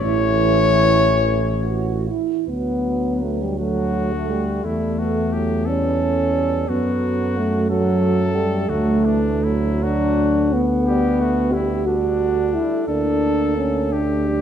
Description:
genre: classical, hymn-like piece for brass band.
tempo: 47-62 BPM (dotted quarters).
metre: 6/8.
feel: rubato.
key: D major.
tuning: A4 = 440 Hz.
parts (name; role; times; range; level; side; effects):
warm cornet; melody; 0.0-14.4 s; D4 to C#5; -25 LUFS; left 5 dB; none.
warm French horn section; second line; 0.0-14.4 s; E4 to B4; -28 LUFS; right 11 dB; none.
warm euphonium; accompaniment; 0.0-14.4 s; E3 to G4; -20 LUFS; equal; none.
warm trombone; accompaniment; 0.0-14.4 s; A2 to Bb3; -29 LUFS; right 6 dB; none.
dark tuba; bass; 0.0-14.4 s; A1 to F#2; -23 LUFS; equal; none.
room: wet scoring stage reverb, RT60 1.6 s.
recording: dark, warm production.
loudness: -17 LUFS.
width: side -9 dB against mid.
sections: 0.0-2.5 A section; 2.5-14.4 B section.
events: none.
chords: 0.0 A; 2.5 D; 4.6 A7/E; 6.7 F#madd11; 8.7 D; 10.9 G/D; 12.9 Gm/D.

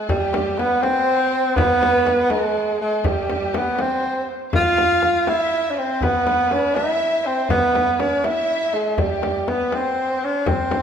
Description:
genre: Persian modal ensemble.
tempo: 81 BPM (dotted quarters).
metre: 6/8.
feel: straight.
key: C dastgah chahargah.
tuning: A4 = 441 Hz.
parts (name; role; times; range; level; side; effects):
warm tenor saxophone; melody; 0.0-10.8 s; G3 to F4; -19 LUFS; right 1 dB; none.
warm symphonic violin section; second line; 0.0-10.8 s; G4 to F5; -27 LUFS; left 1 dB; none.
frame drum; percussion; 0.1-10.8 s; none; -26 LUFS; left 4 dB; none.
tombak; percussion; 0.1-10.8 s; none; -29 LUFS; right 1 dB; none.
room: wet scoring stage reverb, RT60 2.1 s.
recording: minimal, uncompressed stereo recording.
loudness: -17 LUFS.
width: side -8 dB against mid.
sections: 0.1-10.8 A section.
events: none.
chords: none.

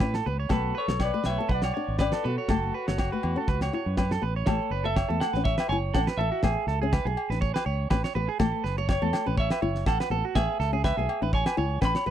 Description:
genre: highlife guitar band.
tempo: 122 BPM.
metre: 4/4.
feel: swing 55% on 16ths.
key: A major.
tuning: A4 = 444 Hz.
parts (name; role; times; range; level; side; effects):
semi-hollow electric guitar; melody; 0.0-12.1 s; A4 to B5; -31 LUFS; left 1 dB; none.
warm trumpet; second line; 0.0-4.2 s; E4 to D5; -38 LUFS; left 7 dB; none.
flamenco guitar; accompaniment; 0.0-12.1 s; E3 to E4; -33 LUFS; left 6 dB; none.
clean electric guitar; arpeggios; 0.0-12.1 s; F#4 to C#5; -31 LUFS; right 10 dB; tape echo.
fingered electric bass; bass; 0.0-12.1 s; F#1 to B2; -29 LUFS; equal; none.
damped 70s drum kit; drums; 0.0-12.1 s; kick drum, snare drum; -28 LUFS; equal; none.
agogo bells; percussion; 0.0-12.0 s; none; -37 LUFS; left 7 dB; none.
room: little or no reverb.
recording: dry, close 1970s-style studio recording.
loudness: -24 LUFS.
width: side -10 dB against mid.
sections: 0.0-4.5 A section; 4.5-12.1 B section.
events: none.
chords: 0.0 Aadd9; 0.5 Bm; 2.5 F#m; 6.4 E/A; 8.4 A; 10.4 E/A.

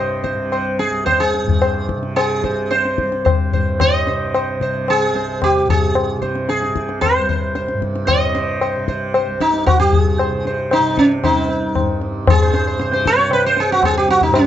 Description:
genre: indian classical, Hindustani.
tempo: 113 BPM.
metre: 4/4.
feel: straight.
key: unclear.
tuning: A4 = 439 Hz.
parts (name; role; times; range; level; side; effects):
sitar; melody; 0.0-14.5 s; Db4 to Eb5; -17 LUFS; right 1 dB; none.
tanpura; drone; 0.0-14.5 s; C2 to C3; -24 LUFS; right 2 dB; none.
tabla; percussion; 0.2-14.5 s; none; -18 LUFS; left 4 dB; none.
room: light reverb.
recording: dark, warm production, nothing above 8.0 kHz.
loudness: -15 LUFS.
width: side -11 dB against mid.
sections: 0.0-12.3 A section; 12.3-14.5 B section.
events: speeding up 0.0-14.5.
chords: none.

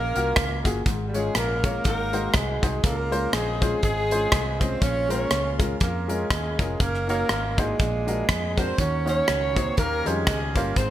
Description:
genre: uptempo gospel.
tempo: 121 BPM.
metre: 4/4.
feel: swing 58% on 8ths.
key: Db major.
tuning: A4 = 443 Hz.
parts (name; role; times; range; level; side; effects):
breathy tenor saxophone; melody; 0.0-10.9 s; G3 to Db4; -29 LUFS; right 4 dB; none.
warm horn section; melody; 0.0-10.9 s; C4 to Db5; -30 LUFS; left 2 dB; none.
vintage muted fingered electric bass; bass; 0.0-10.9 s; F1 to F2; -29 LUFS; equal; none.
clear grand piano; accompaniment; 0.2-10.9 s; Ab2 to Eb5; -30 LUFS; left 2 dB; none.
modern studio drum kit; drums; 0.2-10.9 s; hi-hat, kick drum, rim click; -25 LUFS; equal; gated reverb.
room: light reverb, small room ambience.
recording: bright 1980s-style digital production.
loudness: -21 LUFS.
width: side -12 dB against mid.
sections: 0.0-10.9 A section.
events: none.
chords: 0.0 Gbmaj7; 0.9 Db/Ab; 1.9 Ab7; 2.8 Dbmaj7; 4.8 Bbm7; 6.8 Gb6; 7.8 Bb7b13; 8.8 Ebm7; 9.8 Eb13.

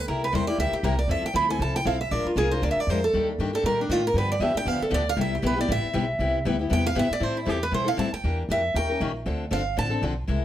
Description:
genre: acoustic string swing (jazz manouche).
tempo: 235 BPM.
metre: 4/4.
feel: swing 56% on 8ths.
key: C major.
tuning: A4 = 442 Hz.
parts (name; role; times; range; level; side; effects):
picked steel-string acoustic guitar; melody; 0.0-10.0 s; D4 to B5; -26 LUFS; right 2 dB; none.
upright bass; bass; 0.0-10.4 s; G1 to B2; -28 LUFS; equal; none.
picked steel-string acoustic guitar; accompaniment; 0.1-10.4 s; C3 to Bb4; -28 LUFS; left 4 dB; none.
room: light reverb.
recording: none.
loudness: -22 LUFS.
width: side -12 dB against mid.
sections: 0.0-7.2 A section; 7.2-10.4 A section.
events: steel-string acoustic guitar solo 0.0-10.4.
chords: 0.1 C7; 1.1 Fmaj7; 2.1 Bb7; 3.1 Ebmaj7; 4.2 G7; 5.2 Cmaj7; 7.2 Am9; 8.2 Em7b5; 8.7 Eb7; 9.3 Dm7.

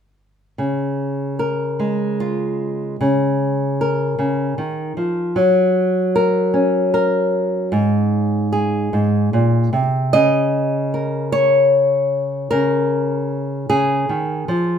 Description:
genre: folk, solo fingerstyle acoustic guitar.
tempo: 50 BPM (dotted quarters).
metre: 6/8.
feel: straight.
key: Db major.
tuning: A4 = 440 Hz.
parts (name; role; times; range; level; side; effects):
nylon-string guitar; solo; 0.6-14.8 s; Ab2 to Eb5; -16 LUFS; equal; none.
room: moderate large studio reverb, RT60 0.8 s.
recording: minimal, uncompressed stereo recording, faint mains hum.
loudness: -16 LUFS.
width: side -8 dB against mid.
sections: 0.6-10.1 A section; 10.1-14.8 B section.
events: none.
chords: 0.6 Db6; 5.4 Gb; 7.7 Abadd9; 10.1 Db5.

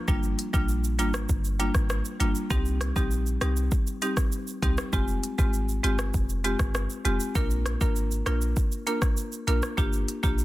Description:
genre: dancehall.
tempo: 99 BPM.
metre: 4/4.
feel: straight.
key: C minor.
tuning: A4 = 440 Hz.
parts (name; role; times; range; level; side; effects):
buzzing marimba with hard mallets; accompaniment; 0.1-10.4 s; G3 to Bb4; -30 LUFS; equal; none.
clean 808-style bass; bass; 0.1-10.4 s; F1 to C2; -27 LUFS; equal; none.
afro-pop drum kit; drums; 0.1-10.4 s; hi-hat, kick drum, rim click, shaker; -28 LUFS; equal; none.
room: little or no reverb.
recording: dense, heavily limited modern master.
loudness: -24 LUFS.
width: side -16 dB against mid.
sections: 0.0-10.4 A section.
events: none.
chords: 0.1 Gm7; 2.5 Cm; 4.9 Fmadd9; 7.4 Bb; 9.8 Gm7.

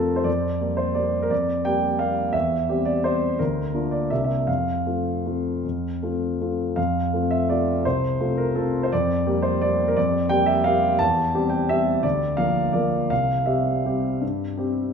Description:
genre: classical, piano waltz.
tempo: 150-180 BPM.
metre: 3/4.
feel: rubato.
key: F major.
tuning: A4 = 440 Hz.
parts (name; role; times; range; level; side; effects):
warm grand piano; solo; 0.0-14.9 s; C2 to A5; -20 LUFS; equal; none.
room: moderate scoring stage reverb, RT60 2.1 s.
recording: minimal, uncompressed stereo recording.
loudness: -20 LUFS.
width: side -6 dB against mid.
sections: 0.0-6.8 A section; 6.8-14.9 A section.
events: none.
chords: 0.3 Gm7/F; 2.3 C/E; 3.4 Bb/D; 4.1 C9; 4.5 F; 8.9 Gm7/F; 11.0 C/E; 12.0 Bb/D; 13.1 C.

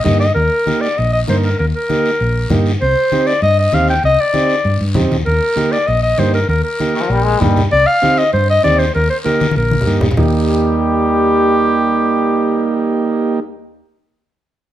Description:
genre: latin, cumbia.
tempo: 196 BPM.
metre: 4/4.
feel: straight.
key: Eb major.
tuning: A4 = 442 Hz.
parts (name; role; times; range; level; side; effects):
clear clarinet; melody; 0.0-13.4 s; G4 to G5; -16 LUFS; left 1 dB; none.
overdriven combo organ; accompaniment; 0.0-13.4 s; Bb3 to Bb4; -18 LUFS; right 4 dB; none.
hollow-body short-scale fingered electric bass; bass; 0.1-13.8 s; Bb1 to G2; -17 LUFS; equal; none.
congas; percussion; 0.1-10.2 s; none; -21 LUFS; left 2 dB; none.
guiro; percussion; 0.1-10.2 s; none; -30 LUFS; left 3 dB; none.
brilliant trombone; second line; 6.9-7.6, 10.2-13.4 s; Eb3 to Ab3; -21 LUFS; left 5 dB; none.
room: light reverb.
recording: minimal, uncompressed stereo recording.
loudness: -12 LUFS.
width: side -12 dB against mid.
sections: 0.4-10.2 A section; 10.2-12.6 B section.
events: drum fill 9.4-10.2.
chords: 0.4 Eb; 2.8 Cmadd9; 5.3 Eb; 7.7 Cm; 8.9 Eb.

